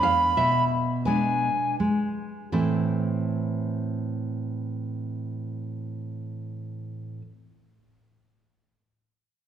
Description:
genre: romantic duo for recorder and classical guitar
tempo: 38-47 BPM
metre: 3/4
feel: rubato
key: A minor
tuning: A4 = 440 Hz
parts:
  - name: alto recorder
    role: melody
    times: 0.0-1.8 s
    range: G#5 to B5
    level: -23 LUFS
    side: equal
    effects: none
  - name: nylon-string guitar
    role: accompaniment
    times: 0.0-7.2 s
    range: E2 to F5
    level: -26 LUFS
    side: right 1 dB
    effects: none
room: wet scoring stage reverb, RT60 2.1 s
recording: recorded in a church or concert hall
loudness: -24 LUFS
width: side -9 dB against mid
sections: 0.0-2.5 A section; 2.5-6.9 B section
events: slowing down 0.0-2.5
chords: 0.0 E7; 2.5 Am

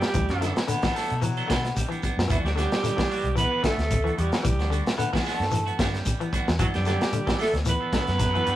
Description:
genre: afrobeat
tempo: 112 BPM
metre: 4/4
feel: swing 54% on 16ths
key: E minor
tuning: A4 = 440 Hz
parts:
  - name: growling alto saxophone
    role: melody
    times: 0.0-8.6 s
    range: E4 to B4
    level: -29 LUFS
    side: right 2 dB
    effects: none
  - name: bright alto saxophone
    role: second line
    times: 0.0-8.6 s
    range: E3 to B3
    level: -30 LUFS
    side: right 2 dB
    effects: none
  - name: clean electric guitar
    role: stabs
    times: 0.0-8.6 s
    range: F#3 to A4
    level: -33 LUFS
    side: right 4 dB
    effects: phaser
  - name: crunchy breakbeat drum kit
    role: drums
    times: 0.0-8.6 s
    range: hi-hat, kick drum, snare drum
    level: -27 LUFS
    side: equal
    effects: none
  - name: electric guitar at the edge of break-up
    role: arpeggios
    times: 0.1-8.5 s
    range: D3 to E3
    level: -33 LUFS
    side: left 4 dB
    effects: spring reverb
  - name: vintage muted fingered electric bass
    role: bass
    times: 0.1-8.6 s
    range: B1 to B2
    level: -27 LUFS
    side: equal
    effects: none
  - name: shekere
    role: percussion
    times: 0.1-8.6 s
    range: none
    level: -32 LUFS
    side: left 1 dB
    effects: none
  - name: raspy baritone saxophone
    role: second line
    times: 0.7-8.6 s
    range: F#3 to B3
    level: -31 LUFS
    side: left 1 dB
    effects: none
room: moderate studio reverb, RT60 0.5 s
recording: rough rehearsal-room recording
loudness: -22 LUFS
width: side -13 dB against mid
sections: 0.0-8.6 A section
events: none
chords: 0.0 Gmaj9; 2.3 Em9; 6.6 Gmaj9

